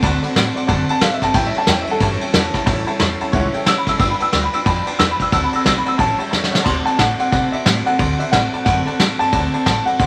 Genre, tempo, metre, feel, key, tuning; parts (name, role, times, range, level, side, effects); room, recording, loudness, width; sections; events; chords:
rockabilly; 181 BPM; 4/4; swing 62% on 8ths; A4 = 440 Hz
picked steel-string acoustic guitar; accompaniment; 0.0-10.1 s; A2 to B4; -26 LUFS; equal
tack piano; accompaniment; 0.0-10.1 s; C#5 to D6; -29 LUFS; equal
upright bass; bass; 0.0-10.1 s; F#1 to C3; -27 LUFS; equal
vintage brush drum kit; drums; 0.0-10.1 s; crash cymbal, kick drum, ride cymbal, snare drum; -21 LUFS; equal
warm upright piano; melody; 0.9-10.1 s; A4 to E6; -22 LUFS; equal
wet studio reverb, RT60 0.7 s; vinyl crackle; -17 LUFS; mono
0.0-6.7 A section; 6.7-10.1 B section
upright piano solo 0.0-6.7; drum fill 6.3-6.7
0.0 D7; 1.3 A7; 4.0 G7; 5.3 D7; 6.0 A7; 6.7 D7